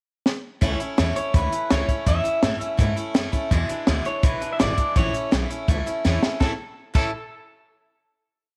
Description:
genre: rockabilly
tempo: 166 BPM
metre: 4/4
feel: straight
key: A major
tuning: A4 = 440 Hz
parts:
  - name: compact cocktail drum kit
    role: drums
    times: 0.3-7.0 s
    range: crash cymbal, hi-hat, kick drum, snare drum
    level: -24 LUFS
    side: equal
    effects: none
  - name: picked swing-style acoustic guitar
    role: accompaniment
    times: 0.6-7.1 s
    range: E2 to E4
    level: -30 LUFS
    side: equal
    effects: none
  - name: upright bass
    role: bass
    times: 0.6-7.1 s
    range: G#1 to A2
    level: -28 LUFS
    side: equal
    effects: none
  - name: electric guitar through a small old amp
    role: melody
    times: 1.2-7.1 s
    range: A4 to E5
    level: -30 LUFS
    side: equal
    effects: subtle chorus, tape echo
room: light reverb, small room ambience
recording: none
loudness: -23 LUFS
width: mono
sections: 0.0-0.6 pickup bar; 0.6-6.4 A section; 6.4-7.9 final chord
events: drum fill 0.3-0.6, 6.0-6.4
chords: 0.0 N.C.; 0.6 A; 3.5 E7; 5.0 A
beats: 0.26 | 0.62 0.98 1.34 1.70 | 2.06 2.43 2.79 3.15 | 3.51 3.88 4.24 4.60 | 4.96 5.32 5.68 6.05 | 6.41 6.77

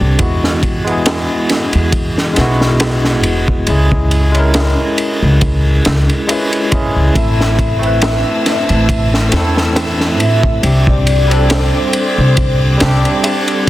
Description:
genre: trip hop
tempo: 69 BPM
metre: 4/4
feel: swing 55% on 16ths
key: A dorian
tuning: A4 = 440 Hz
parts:
  - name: barky tine electric piano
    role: accompaniment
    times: 0.0-13.7 s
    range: G3 to B4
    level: -17 LUFS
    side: equal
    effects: medium stereo tremolo, harmonic tremolo, vintage 12-bit sampler grit, low-pass filter, tape echo
  - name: upright bass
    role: bass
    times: 0.0-13.0 s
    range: E1 to A2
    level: -14 LUFS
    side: equal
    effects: tube saturation
  - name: crunchy breakbeat drum kit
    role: drums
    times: 0.2-13.7 s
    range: kick drum, ride cymbal, snare drum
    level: -16 LUFS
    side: equal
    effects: none
  - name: darbuka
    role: percussion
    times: 1.1-13.4 s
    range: none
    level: -28 LUFS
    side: left 2 dB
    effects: none
  - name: pure breathy sine lead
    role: melody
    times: 7.2-12.6 s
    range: C5 to E5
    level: -20 LUFS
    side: left 2 dB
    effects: lush chorus, dub echo
  - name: warm studio string section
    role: sustained chords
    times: 7.2-13.7 s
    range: C4 to E6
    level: -24 LUFS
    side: left 2 dB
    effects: none
room: studio ambience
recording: dense, heavily limited modern master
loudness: -11 LUFS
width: side -15 dB against mid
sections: 0.0-13.7 A section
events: none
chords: 0.2 Eadd9; 3.7 C#m; 7.2 Am; 10.6 Csus2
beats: | 0.20 1.07 1.94 2.81 | 3.68 4.55 5.42 6.29 | 7.16 8.02 8.89 9.76 | 10.63 11.50 12.37 13.24

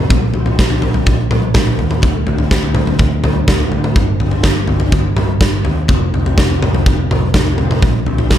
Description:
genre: quiet-loud alternative rock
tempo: 124 BPM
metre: 4/4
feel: straight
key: unclear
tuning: A4 = 441 Hz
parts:
  - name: picked electric bass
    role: bass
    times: 0.0-8.4 s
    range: F1 to Eb2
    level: -17 LUFS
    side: equal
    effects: none
  - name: big rock drum kit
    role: drums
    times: 0.1-8.4 s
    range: kick drum, snare drum, toms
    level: -13 LUFS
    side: equal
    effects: none
room: little or no reverb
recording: none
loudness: -12 LUFS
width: side -11 dB against mid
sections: 0.0-8.4 A section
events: none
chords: none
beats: | 0.10 0.58 1.06 1.55 | 2.03 2.51 2.99 3.48 | 3.96 4.44 4.92 5.41 | 5.89 6.37 6.85 7.34 | 7.82 8.30

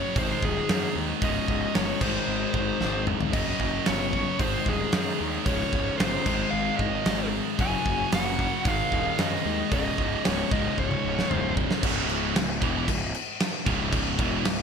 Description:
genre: hard rock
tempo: 113 BPM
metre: 4/4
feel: straight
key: unclear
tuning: A4 = 440 Hz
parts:
  - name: dark smooth lead guitar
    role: melody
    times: 0.0-11.5 s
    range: Ab4 to Ab5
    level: -30 LUFS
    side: left 1 dB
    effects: overdrive
  - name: overdriven semi-hollow guitar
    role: riff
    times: 0.0-14.6 s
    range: Db2 to Ab3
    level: -31 LUFS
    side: left 13 dB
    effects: lush chorus
  - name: tight distorted guitar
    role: riff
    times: 0.0-14.6 s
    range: Db2 to Ab3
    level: -30 LUFS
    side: right 14 dB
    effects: distortion
  - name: fuzz picked electric bass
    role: bass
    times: 0.2-14.6 s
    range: Db1 to Gb2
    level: -32 LUFS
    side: equal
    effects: overdrive
  - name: big rock drum kit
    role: drums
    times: 0.2-14.6 s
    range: crash cymbal, hi-hat, kick drum, snare drum, toms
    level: -28 LUFS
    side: equal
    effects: gated reverb
room: light reverb, studio ambience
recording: bright 1980s-style digital production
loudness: -23 LUFS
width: side -6 dB against mid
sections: 0.0-11.8 A section; 11.8-14.6 B section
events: drum fill 2.8-3.3, 10.8-11.8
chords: 0.2 Ab5; 1.2 Db5; 2.0 Ab; 3.3 Gb5; 4.4 Ab5; 5.5 Db5; 6.3 Ab5; 7.6 Gb5; 8.7 Ab5; 9.7 Db5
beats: 0.16 0.69 | 1.22 1.75 2.28 2.81 | 3.34 3.87 4.40 4.93 | 5.47 6.00 6.53 7.06 | 7.59 8.12 8.65 9.19 | 9.72 10.25 10.77 11.30 | 11.83 12.36 12.88 13.41 | 13.93 14.46

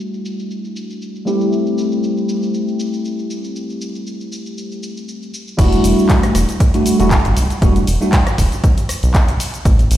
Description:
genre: deep house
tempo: 118 BPM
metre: 4/4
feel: swing 54% on 16ths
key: E minor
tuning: A4 = 440 Hz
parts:
  - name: tine electric piano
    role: stabs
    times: 0.0-8.1 s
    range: G3 to G4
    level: -18 LUFS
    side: equal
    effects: lush chorus, sidechain pumping, low-pass filter, dub echo
  - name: deep house drum kit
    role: drums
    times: 0.0-10.0 s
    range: crash cymbal, handclaps, hi-hat, rim click, shaker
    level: -25 LUFS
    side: equal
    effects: low-pass filter on hats, low-pass filter on snare, low-pass filter on perc, low-pass filter on cymbals, low-pass filter on room
  - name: round analog bass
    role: bass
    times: 5.6-10.0 s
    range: E1 to B1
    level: -16 LUFS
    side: equal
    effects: sidechain pumping
  - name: electronic kick drum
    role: drums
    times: 5.6-9.8 s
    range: none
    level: -14 LUFS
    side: equal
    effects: none
room: light reverb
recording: played on a big sound system in a bare room, stone room reverb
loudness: -14 LUFS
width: side -12 dB against mid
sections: 0.0-5.6 A section; 5.6-10.0 B section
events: drop 5.6-10.0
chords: 0.0 Em11; 1.3 Am7; 5.3 N.C.; 5.6 Em11; 9.4 N.C.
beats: 0.50 1.01 | 1.52 2.03 2.54 3.04 | 3.55 4.06 4.57 5.08 | 5.59 6.09 6.60 7.11 | 7.62 8.13 8.64 9.15 | 9.65

